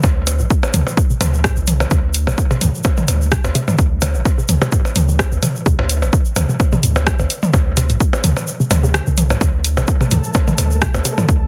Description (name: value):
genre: minimal techno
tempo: 128 BPM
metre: 4/4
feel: swing 55% on 16ths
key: unclear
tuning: A4 = 440 Hz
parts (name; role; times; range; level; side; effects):
- hollow square pluck; riff; 0.0-11.2 s; A2 to D3; -24 LUFS; equal; chorus, sidechain pumping, dub echo
- punchy sub bass; bass; 0.0-11.5 s; A1 to D2; -20 LUFS; equal; sidechain pumping
- electronic kick drum; drums; 0.0-11.4 s; none; -18 LUFS; equal; overdrive
- egg shaker; percussion; 0.0-11.4 s; none; -30 LUFS; equal; none
- electronic percussion blips and toms; percussion; 0.0-11.3 s; none; -23 LUFS; equal; overdrive, dub echo
- house drum kit; drums; 0.3-11.2 s; hi-hat, rim click; -22 LUFS; equal; overdrive
- flickering grainy texture; texture; 9.7-11.5 s; A3 to A4; -31 LUFS; equal; built-in reverb, sidechain pumping
room: light reverb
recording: heavily compressed radio sound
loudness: -16 LUFS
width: mono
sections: 0.0-11.5 A section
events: kick drops out 8.5-9.4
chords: 0.0 D5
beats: | 0.04 0.50 0.97 1.44 | 1.91 2.38 2.85 3.32 | 3.79 4.25 4.72 5.19 | 5.66 6.13 6.60 7.07 | 7.54 8.00 8.47 8.94 | 9.41 9.88 10.35 10.82 | 11.29